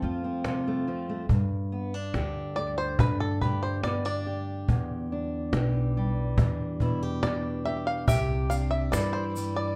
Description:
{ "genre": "acoustic folk duo or small band", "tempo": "71 BPM", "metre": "4/4", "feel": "straight", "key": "G mixolydian", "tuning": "A4 = 440 Hz", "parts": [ { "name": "bluegrass banjo", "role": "melody", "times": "0.0-9.8 s", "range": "A4 to F5", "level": "-34 LUFS", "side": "equal", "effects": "slapback echo" }, { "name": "fingerpicked steel-string acoustic guitar", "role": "accompaniment", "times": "0.0-9.8 s", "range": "E2 to G4", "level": "-34 LUFS", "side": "equal", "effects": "none" }, { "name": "upright bass", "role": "bass", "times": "0.0-9.7 s", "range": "B1 to G2", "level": "-33 LUFS", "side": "equal", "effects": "none" }, { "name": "cajon", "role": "percussion", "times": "0.0-9.7 s", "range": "none", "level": "-31 LUFS", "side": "equal", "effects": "none" }, { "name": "metal-body resonator slide guitar", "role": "second line", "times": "8.1-9.8 s", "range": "G4", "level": "-39 LUFS", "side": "equal", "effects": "none" }, { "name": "tube shaker", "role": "percussion", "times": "8.1-9.6 s", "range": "none", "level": "-45 LUFS", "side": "equal", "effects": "none" } ], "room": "moderate small room reverb, RT60 0.5 s", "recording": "dark, warm production", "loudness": "-28 LUFS", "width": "mono", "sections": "0.0-1.3 A section; 1.3-9.8 B section", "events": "five-string banjo solo 1.3-9.8", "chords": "0.0 F; 1.3 Gsus2; 4.7 Em7; 8.1 Cadd9", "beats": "0.45 | 1.30 2.15 2.99 3.84 | 4.69 5.54 6.39 7.23 | 8.08 8.93" }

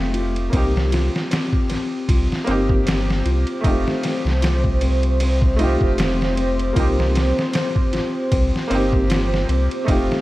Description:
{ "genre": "trip hop", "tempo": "77 BPM", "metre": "4/4", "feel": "swing 56% on 16ths", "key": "C dorian", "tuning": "A4 = 440 Hz", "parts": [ { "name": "clear upright piano", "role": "accompaniment", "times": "0.0-10.2 s", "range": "A3 to G4", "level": "-24 LUFS", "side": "right 1 dB", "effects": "harmonic tremolo, tape echo" }, { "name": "felt-muted upright piano", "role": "arpeggios", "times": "0.0-10.2 s", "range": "C4 to F4", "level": "-26 LUFS", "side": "left 3 dB", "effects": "ping-pong delay" }, { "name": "warm sub bass", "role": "bass", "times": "0.0-10.1 s", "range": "F1 to C2", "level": "-20 LUFS", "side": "equal", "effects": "none" }, { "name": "trip hop sampler-style drum kit", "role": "drums", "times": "0.1-10.2 s", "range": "kick drum, ride cymbal, snare drum", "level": "-22 LUFS", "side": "equal", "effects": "studio ambience" }, { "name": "dark analog pad", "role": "sustained chords", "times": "0.5-10.2 s", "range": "C5", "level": "-28 LUFS", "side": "right 2 dB", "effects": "chorus, vintage 12-bit sampler grit" } ], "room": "digital ambience", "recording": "vinyl crackle", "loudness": "-17 LUFS", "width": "side -17 dB against mid", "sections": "0.0-10.2 A section", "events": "none", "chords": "0.0 F9; 0.5 Cm7; 3.6 F9; 6.8 Cm7", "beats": "| 0.53 1.31 2.09 2.87 | 3.65 4.43 5.21 5.99 | 6.76 7.54 8.32 9.10 | 9.88" }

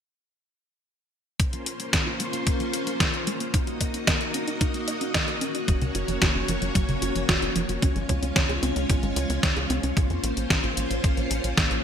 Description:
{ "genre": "italo disco", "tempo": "112 BPM", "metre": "4/4", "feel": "straight", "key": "Bb minor", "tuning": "A4 = 440 Hz", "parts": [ { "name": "string machine, full ensemble", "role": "sustained chords", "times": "1.4-11.8 s", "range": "Ab3 to Eb5", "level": "-29 LUFS", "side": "equal", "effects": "ensemble chorus" }, { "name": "warbly dusty pluck", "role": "arpeggios", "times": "1.4-11.8 s", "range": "Db3 to Eb5", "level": "-32 LUFS", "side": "right 1 dB", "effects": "chorus, ping-pong delay" }, { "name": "detuned 8-bit digital drum machine", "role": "drums", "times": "1.4-11.8 s", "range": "hi-hat, snare drum", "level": "-27 LUFS", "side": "left 1 dB", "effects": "gated reverb" }, { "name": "electronic kick drum", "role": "drums", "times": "1.4-11.7 s", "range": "none", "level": "-26 LUFS", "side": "equal", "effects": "none" }, { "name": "tight sequencer bass", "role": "bass", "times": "5.7-11.8 s", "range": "Gb1 to F2", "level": "-29 LUFS", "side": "equal", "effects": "none" } ], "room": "moderate lush hall reverb, RT60 2.1 s", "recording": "bright 1980s-style digital production", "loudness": "-22 LUFS", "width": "side -8 dB against mid", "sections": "1.4-10.0 A section; 10.0-11.8 B section", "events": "filter sweep on synth arpeggio sound 1.4-10.0", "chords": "1.4 Bbmadd9; 3.5 Ebm; 5.7 Gb; 7.8 Db; 10.0 Bbmadd9", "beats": "| 1.40 1.93 2.47 3.00 | 3.54 4.08 4.61 5.15 | 5.68 6.22 6.75 7.29 | 7.83 8.36 8.90 9.43 | 9.97 10.50 11.04 11.57" }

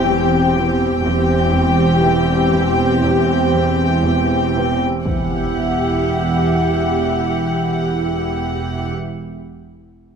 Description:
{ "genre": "cinematic, suspense film score", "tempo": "60 BPM", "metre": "4/4", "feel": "straight", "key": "E minor", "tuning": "A4 = 440 Hz", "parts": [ { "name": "warm symphonic violin section", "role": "melody", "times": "0.0-8.9 s", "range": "F#5 to G5", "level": "-26 LUFS", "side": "left 6 dB", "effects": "none" }, { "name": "dark symphonic violin section", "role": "second line", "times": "0.0-8.9 s", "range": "G4", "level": "-22 LUFS", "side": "left 2 dB", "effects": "none" }, { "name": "dark studio viola section", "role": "accompaniment", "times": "0.0-8.9 s", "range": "C4 to E4", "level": "-24 LUFS", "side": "right 2 dB", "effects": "none" }, { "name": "warbly tape-like pad", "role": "sustained chords", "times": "0.0-8.9 s", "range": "G4 to G5", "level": "-25 LUFS", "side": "equal", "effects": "chorus, built-in reverb" }, { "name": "dark studio double bass section", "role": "bass", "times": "0.0-8.9 s", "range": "E1", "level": "-24 LUFS", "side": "right 3 dB", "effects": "none" }, { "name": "warm symphonic cello section", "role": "bass", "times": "0.0-8.9 s", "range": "E2", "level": "-23 LUFS", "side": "right 2 dB", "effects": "none" }, { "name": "organ-like drone", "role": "drone", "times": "0.0-8.9 s", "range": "E2", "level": "-23 LUFS", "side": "equal", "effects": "ensemble chorus, built-in reverb" }, { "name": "impact", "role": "sound effects", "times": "5.1-8.9 s", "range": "none", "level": "-27 LUFS", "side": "left 1 dB", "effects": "none" }, { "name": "warm symphonic cello section", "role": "riff", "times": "0.1-4.9 s", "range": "E2 to E3", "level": "-27 LUFS", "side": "right 1 dB", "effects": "none" } ], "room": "moderate scoring stage reverb, RT60 1.9 s", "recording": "none", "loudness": "-15 LUFS", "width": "side -6 dB against mid", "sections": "0.0-5.1 A section; 5.1-9.0 B section", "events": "impact 0.0-1.1, 5.1-9.0", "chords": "0.0 C/E; 5.1 Emadd9", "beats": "0.06 | 1.05 2.04 3.03 4.04 | 5.06 6.05 7.05 8.05" }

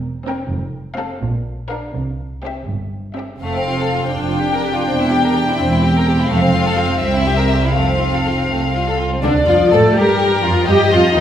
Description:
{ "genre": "quick classical-period movement for string orchestra", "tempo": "83 BPM (dotted quarters)", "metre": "6/8", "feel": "rubato", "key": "F major", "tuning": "A4 = 444 Hz", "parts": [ { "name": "dark chamber double bass section", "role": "bass", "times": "0.0-11.2 s", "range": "E1 to A2", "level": "-22 LUFS", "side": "right 2 dB", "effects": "none" }, { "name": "dark studio cello section", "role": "bass", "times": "0.0-11.2 s", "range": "C2 to A4", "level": "-20 LUFS", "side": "right 2 dB", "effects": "none" }, { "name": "warm chamber violin section", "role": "melody", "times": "0.3-11.2 s", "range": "D4 to G5", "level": "-22 LUFS", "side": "left 6 dB", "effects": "none" }, { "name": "warm chamber violin section", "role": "second line", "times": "0.3-11.2 s", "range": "A3 to Eb5", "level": "-20 LUFS", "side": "left 2 dB", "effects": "none" }, { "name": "rich chamber viola section", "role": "accompaniment", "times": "0.3-11.2 s", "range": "D3 to D4", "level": "-21 LUFS", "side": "right 1 dB", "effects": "none" } ], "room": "wet recital hall reverb, RT60 1.3 s", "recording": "recorded in a church or concert hall", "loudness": "-14 LUFS", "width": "side -10 dB against mid", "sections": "0.0-9.2 A section; 9.2-11.2 B section", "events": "none", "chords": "0.0 C7/E; 0.5 F; 1.2 Bb; 1.9 C; 3.4 F; 4.1 G7(no3)/F; 4.9 C/E; 6.3 F; 7.0 C; 7.7 F; 9.2 Bb/D; 10.7 Cm (rootless)", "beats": "| 0.51 1.22 | 1.95 2.68 | 3.42 4.14 | 4.86 5.57 | 6.28 7.00 | 7.74 8.50 | 9.24 9.97 | 10.69" }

